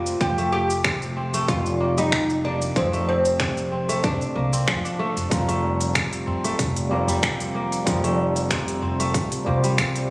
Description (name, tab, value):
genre	organic downtempo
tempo	94 BPM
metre	4/4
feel	swing 54% on 16ths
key	F major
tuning	A4 = 442 Hz
part	oud	melody	0.0-4.6 s	C4 to G4	-25 LUFS	equal	tape echo
part	kora	arpeggios	0.0-10.1 s	C3 to D4	-26 LUFS	equal	tape echo
part	upright bass	bass	0.0-10.1 s	F1 to Eb2	-27 LUFS	equal	sidechain pumping
part	organic electronic drum kit	drums	0.1-10.1 s	finger snaps, hi-hat, shaker	-26 LUFS	equal	none
part	electronic kick drum	drums	0.2-9.9 s	none	-25 LUFS	equal	none
part	overdriven tine electric piano	accompaniment	5.3-10.1 s	G3 to Bb5	-26 LUFS	equal	medium tremolo, sidechain pumping, tape echo
part	udu	percussion	6.3-9.6 s	none	-32 LUFS	equal	none
room	moderate huge ambient reverb, RT60 4.3 s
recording	recorded on a phone in the room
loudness	-20 LUFS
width	side -23 dB against mid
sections	0.0-10.1 A section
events	none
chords	0.2 Gm7/F; 5.3 Fsus4